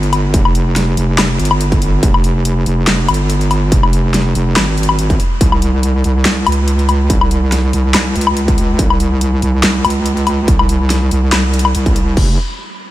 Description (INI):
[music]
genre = heavy wobble dubstep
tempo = 142 BPM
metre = 4/4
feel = swing 54% on 16ths, half-time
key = F minor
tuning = A4 = 440 Hz
[part]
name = wobble bass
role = bass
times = 0.0-12.4 s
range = F1 to Db2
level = -14 LUFS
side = equal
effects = chorus, overdrive
[part]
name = dubstep drum kit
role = drums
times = 0.0-12.3 s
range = crash cymbal, handclaps, hi-hat, snare drum, woodblock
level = -17 LUFS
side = left 2 dB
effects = studio ambience
[part]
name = electronic kick drum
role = drums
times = 0.3-12.3 s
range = none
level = -13 LUFS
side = equal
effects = distortion, studio ambience
[sound]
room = light reverb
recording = none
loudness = -11 LUFS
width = side -15 dB against mid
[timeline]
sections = 0.0-12.2 A section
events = drop 0.0-12.2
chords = none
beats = | 0.34 0.76 1.18 1.61 | 2.03 2.45 2.87 3.30 | 3.72 4.14 4.56 4.99 | 5.41 5.83 6.25 6.68 | 7.10 7.52 7.94 8.37 | 8.79 9.21 9.63 10.06 | 10.48 10.90 11.32 11.75 | 12.17